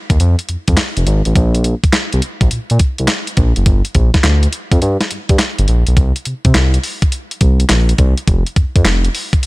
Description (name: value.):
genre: R&B, new jack swing.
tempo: 104 BPM.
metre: 4/4.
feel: swing 66% on 16ths.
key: unclear.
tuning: A4 = 440 Hz.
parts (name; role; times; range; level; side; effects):
smooth synth bass; bass; 0.1-9.1 s; F1 to C3; -13 LUFS; equal; none.
crisp 8-bit digital drum machine; drums; 0.1-9.5 s; handclaps, hi-hat, kick drum, snare drum; -14 LUFS; equal; none.
room: digital ambience.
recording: none.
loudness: -12 LUFS.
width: side -22 dB against mid.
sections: 0.0-6.0 A section; 6.0-9.5 B section.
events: none.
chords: none.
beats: 0.20 0.78 | 1.35 1.93 2.51 3.09 | 3.66 4.24 4.82 5.39 | 5.97 6.55 7.12 7.70 | 8.28 8.86 9.43.